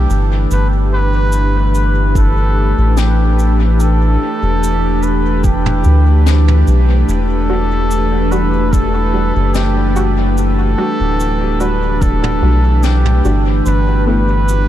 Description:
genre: ambient dub.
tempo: 73 BPM.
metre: 4/4.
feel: straight.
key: E minor.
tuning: A4 = 442 Hz.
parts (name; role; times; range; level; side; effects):
trumpet with cup mute; melody; 0.0-14.7 s; G4 to B4; -21 LUFS; equal; dub echo.
airy breathy pad; sustained chords; 0.0-14.7 s; E3 to B4; -18 LUFS; equal; chorus.
soft dub sub bass; bass; 0.0-14.7 s; D1 to D2; -13 LUFS; equal; none.
vintage brush drum kit; drums; 0.1-14.7 s; cabasa, snare drum, toms; -27 LUFS; left 1 dB; dub echo.
electronic kick drum; drums; 2.2-12.2 s; none; -15 LUFS; equal; none.
filtered dub chord stab; stabs; 7.5-14.2 s; G3 to F#4; -23 LUFS; equal; chorus, dub echo.
room: light reverb, small room ambience.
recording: none.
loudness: -11 LUFS.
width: side -12 dB against mid.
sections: 0.0-14.7 A section.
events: none.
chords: 0.0 Em7; 0.5 G6; 7.1 Em9; 13.7 G6.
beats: | 0.51 1.33 2.15 2.98 | 3.80 4.62 5.44 6.26 | 7.09 7.91 8.73 9.55 | 10.37 11.20 12.02 12.84 | 13.66 14.48.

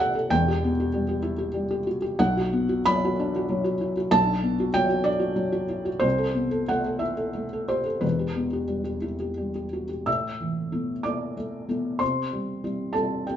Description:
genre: neoclassical minimalist piano.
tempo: 58-65 BPM (dotted quarters).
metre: 6/8.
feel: rubato.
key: A dorian.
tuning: A4 = 440 Hz.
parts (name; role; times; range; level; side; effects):
felt-muted upright piano; solo; 0.0-13.4 s; E1 to E6; -23 LUFS; equal; none.
room: wet studio reverb, RT60 0.6 s.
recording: heard from further back in the room, nothing above 7.7 kHz.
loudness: -23 LUFS.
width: side -10 dB against mid.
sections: 0.0-10.1 A section; 10.1-13.4 B section.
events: none.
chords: 0.3 Em; 2.2 Bm; 6.0 Amadd9/C; 8.0 Em; 10.1 Asus2; 12.0 C.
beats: | 0.30 1.23 | 2.19 3.18 | 4.12 5.08 | 6.04 7.02 | 8.03 9.04 | 10.07 11.04 | 12.01 12.96.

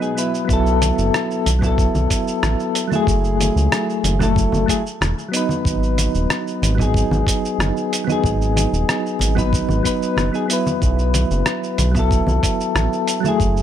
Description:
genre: sunset chillout.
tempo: 93 BPM.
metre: 4/4.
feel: straight.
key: unclear.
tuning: A4 = 443 Hz.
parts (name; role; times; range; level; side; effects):
soft electric-piano-like synth keys; accompaniment; 0.0-13.6 s; F#3 to B4; -20 LUFS; left 1 dB; chorus, tremolo, auto-pan, tape echo.
ethereal airy pad; sustained chords; 0.0-0.5 s; B2 to G#5; -39 LUFS; left 2 dB; none.
dusty soul sampler-style drum kit; drums; 0.0-13.6 s; hi-hat, rim click, shaker; -24 LUFS; right 2 dB; none.
round analog bass; bass; 0.5-13.6 s; D#1 to C#2; -19 LUFS; equal; none.
electronic kick drum; drums; 0.5-13.5 s; none; -22 LUFS; equal; none.
congas; percussion; 0.8-13.4 s; none; -27 LUFS; left 1 dB; none.
room: light reverb, digital ambience.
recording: none.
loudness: -16 LUFS.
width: side -10 dB against mid.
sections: 0.5-13.6 A section.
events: none.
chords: 0.5 B7sus4; 3.1 F#m9; 5.3 G#m7; 10.8 B7sus4.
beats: | 0.49 1.14 1.78 2.43 | 3.08 3.72 4.37 5.01 | 5.66 6.30 6.95 7.59 | 8.24 8.88 9.53 10.17 | 10.82 11.46 12.11 12.75 | 13.40.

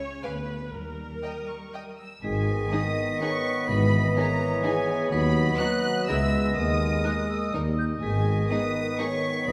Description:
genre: cinematic, playful, whimsical film cue.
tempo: 124 BPM.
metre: 3/4.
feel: straight.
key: G# minor.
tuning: A4 = 438 Hz.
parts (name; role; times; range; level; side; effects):
warm studio viola section; accompaniment; 0.0-9.1 s; D#3 to C#5; -40 LUFS; equal; none.
dark studio cello section; bass; 0.0-9.5 s; C#2 to C#4; -34 LUFS; equal; none.
warm studio violin section; melody; 0.2-9.5 s; G#5 to F#6; -38 LUFS; equal; none.
warm studio violin section; second line; 0.2-9.1 s; D#4 to Ab5; -40 LUFS; equal; none.
warm studio double bass section; bass; 0.2-9.5 s; G#1 to D#2; -34 LUFS; equal; none.
vibraphone with medium mallets; melody; 2.2-9.5 s; G#4 to F#5; -36 LUFS; equal; none.
clear oboe; second line; 2.2-9.5 s; D#5 to E5; -38 LUFS; equal; none.
silver concert flute; second line; 2.2-9.5 s; D#6 to B6; -35 LUFS; equal; none.
clear bassoon; accompaniment; 2.2-9.5 s; D#3 to G#3; -36 LUFS; equal; none.
dark French horn section; sustained chords; 2.2-9.5 s; D#3 to B3; -35 LUFS; equal; none.
dark tuba; bass; 2.2-9.5 s; G#1 to D#2; -34 LUFS; equal; none.
mellow clarinet; second line; 2.7-9.5 s; A#4 to D#5; -36 LUFS; equal; none.
room: wet scoring stage reverb, RT60 1.6 s.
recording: none.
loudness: -26 LUFS.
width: mono.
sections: 0.0-2.2 A section; 2.2-9.5 B section.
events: none.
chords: 0.2 D5; 0.7 D#; 2.2 G#m; 3.7 Emaj7/G#; 5.1 B/D#; 6.1 A#m7b5/C#; 6.6 D#sus4; 7.5 D#; 8.0 G#m.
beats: 0.24 | 0.73 1.24 1.74 | 2.23 2.72 3.20 | 3.68 4.16 4.64 | 5.11 5.60 6.08 | 6.57 7.05 7.54 | 8.03 8.51 8.99 | 9.48.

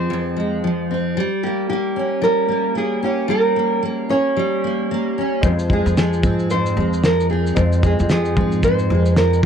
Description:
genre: acoustic pop.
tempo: 112 BPM.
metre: 4/4.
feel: swing 60% on 16ths.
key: F minor.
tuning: A4 = 435 Hz.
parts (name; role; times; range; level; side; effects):
nylon-string guitar; melody; 0.0-9.4 s; G4 to Db5; -21 LUFS; right 1 dB; tape echo.
fingerpicked steel-string acoustic guitar; accompaniment; 0.0-9.5 s; F2 to Db4; -20 LUFS; equal; double-tracked left and right.
felt-muted upright piano; accompaniment; 5.4-9.5 s; Ab3 to C5; -30 LUFS; left 5 dB; none.
upright bass; bass; 5.4-9.5 s; F2 to Ab2; -20 LUFS; equal; none.
cloth-damped thuddy drum kit; drums; 5.4-9.5 s; kick drum, shaker, snare drum; -20 LUFS; equal; none.
room: little or no reverb.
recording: dry, close 1970s-style studio recording.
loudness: -16 LUFS.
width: side -8 dB against mid.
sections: 0.0-9.5 A section.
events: none.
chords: 0.0 Fm; 1.2 Gdim; 5.4 Fm.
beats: 0.10 0.63 | 1.16 1.70 2.23 2.76 | 3.30 3.83 4.36 4.90 | 5.43 5.96 6.50 7.03 | 7.57 8.10 8.63 9.17.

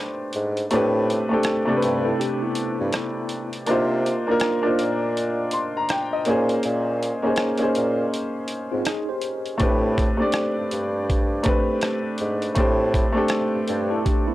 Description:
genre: lo-fi hip hop.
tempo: 81 BPM.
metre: 4/4.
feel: swing 60% on 16ths.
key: unclear.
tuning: A4 = 441 Hz.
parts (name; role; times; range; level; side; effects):
clear upright piano; accompaniment; 0.0-14.3 s; C3 to C6; -22 LUFS; equal; cassette tape.
boom bap sampler-style drum kit; drums; 0.3-14.3 s; hi-hat, kick drum, rim click; -25 LUFS; equal; none.
warm bassoon; bass; 0.4-14.0 s; G2 to C3; -25 LUFS; equal; none.
bright tine electric piano; second line; 1.8-3.5, 8.7-14.3 s; B3 to C5; -28 LUFS; equal; medium stereo tremolo, tape echo.
room: light reverb.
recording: dry, gritty hardware recording.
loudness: -20 LUFS.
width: side -16 dB against mid.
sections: 0.0-14.3 A section.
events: break 0.0-9.6.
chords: 0.0 Am11; 3.7 Cm11; 6.3 Bbm11; 9.6 Am11.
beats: | 0.72 1.46 2.20 2.94 | 3.68 4.42 5.16 5.90 | 6.64 7.38 8.12 8.86 | 9.61 10.35 11.09 11.83 | 12.57 13.31 14.05.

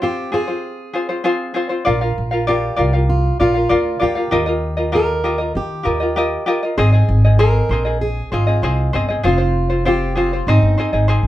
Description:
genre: acoustic pop.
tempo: 98 BPM.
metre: 4/4.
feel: straight.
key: Bb mixolydian.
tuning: A4 = 440 Hz.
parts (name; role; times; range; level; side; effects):
fingerpicked plugged-in steel-string acoustic guitar; melody; 0.0-11.3 s; Eb4 to Bb4; -22 LUFS; right 1 dB; none.
tenor ukulele; accompaniment; 0.0-11.3 s; C4 to F5; -19 LUFS; left 1 dB; none.
upright bass; bass; 1.9-11.3 s; F1 to Eb3; -17 LUFS; equal; none.
room: moderate studio ambience, RT60 0.5 s.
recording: band playing live in one room.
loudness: -15 LUFS.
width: side -14 dB against mid.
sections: 0.0-11.3 A section.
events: none.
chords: 0.0 Fm; 1.9 Bb; 4.3 Ebadd9; 6.8 Ab; 9.2 Fm; 10.5 Ab.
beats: 0.02 0.64 1.25 | 1.87 2.48 3.09 3.71 | 4.32 4.94 5.55 6.17 | 6.78 7.39 8.01 8.62 | 9.24 9.85 10.47 11.08.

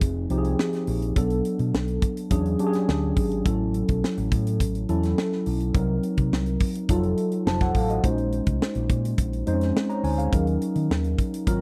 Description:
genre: polished 1980s jazz-funk pop.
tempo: 105 BPM.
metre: 4/4.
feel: straight.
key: unclear.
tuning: A4 = 441 Hz.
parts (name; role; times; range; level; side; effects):
mellow tine electric piano; accompaniment; 0.0-11.6 s; F3 to Bb5; -28 LUFS; equal; analog chorus.
fingered electric bass; bass; 0.0-11.6 s; F1 to Eb3; -29 LUFS; equal; none.
tight funk drum kit; drums; 0.0-11.6 s; hi-hat, kick drum, snare drum; -27 LUFS; equal; none.
room: studio reverb.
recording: dry, close 1970s-style studio recording.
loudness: -24 LUFS.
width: mono.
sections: 0.0-11.6 A section.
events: none.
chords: 0.0 Fm7; 1.2 Cbm7; 2.3 E13; 3.5 A6; 5.7 Cm7b5; 6.9 F7b9; 8.0 Bbm11; 10.3 Ebm7.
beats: 0.02 0.59 | 1.17 1.74 2.31 2.88 | 3.46 4.03 4.60 5.17 | 5.75 6.32 6.89 7.46 | 8.04 8.61 9.18 9.76 | 10.33 10.90 11.47.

